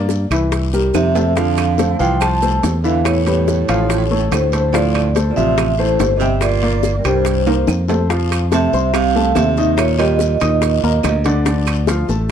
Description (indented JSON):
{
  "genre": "Afro-Cuban jazz",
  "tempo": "143 BPM",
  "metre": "4/4",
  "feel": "straight",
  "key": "D minor",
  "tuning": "A4 = 439 Hz",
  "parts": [
    { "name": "warm upright piano", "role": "accompaniment", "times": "0.0-12.3 s", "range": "D3 to Eb6", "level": "-20 LUFS", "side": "left 3 dB", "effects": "none" },
    { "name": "modern bright fingered electric bass", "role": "bass", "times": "0.0-12.3 s", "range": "G1 to G2", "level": "-18 LUFS", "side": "equal", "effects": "none" },
    { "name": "bongos", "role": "percussion", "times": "0.1-12.3 s", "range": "none", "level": "-22 LUFS", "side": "left 10 dB", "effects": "none" },
    { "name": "guiro", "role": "percussion", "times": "0.1-12.3 s", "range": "none", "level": "-34 LUFS", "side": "left 16 dB", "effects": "none" },
    { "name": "maracas", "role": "percussion", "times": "0.1-12.3 s", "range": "none", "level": "-35 LUFS", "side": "right 17 dB", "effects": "none" },
    { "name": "timbales", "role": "percussion", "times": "0.1-12.1 s", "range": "none", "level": "-25 LUFS", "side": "right 8 dB", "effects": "none" },
    { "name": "claves", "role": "percussion", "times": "0.3-11.9 s", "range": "none", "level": "-31 LUFS", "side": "right 15 dB", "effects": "none" },
    { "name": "warm baritone saxophone", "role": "second line", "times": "0.9-11.2 s", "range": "G2 to F3", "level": "-22 LUFS", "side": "right 12 dB", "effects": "none" },
    { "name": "vibraphone with medium hard mallets", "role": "melody", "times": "1.0-11.2 s", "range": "Bb4 to A5", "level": "-20 LUFS", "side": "right 1 dB", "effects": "none" }
  ],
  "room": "studio ambience",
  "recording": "dry, close 1970s-style studio recording",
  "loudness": "-13 LUFS",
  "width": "side -8 dB against mid",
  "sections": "0.0-8.1 A section; 8.1-12.3 B section",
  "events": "drum fill 0.9-1.4, 7.5-8.1",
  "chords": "0.0 Gm; 0.5 C6; 1.4 F6; 3.1 Emadd11; 3.9 Aaug; 4.7 Dm9; 6.4 Gm; 7.3 C5; 8.1 Fmaj7; 9.8 Eb; 11.5 Dm"
}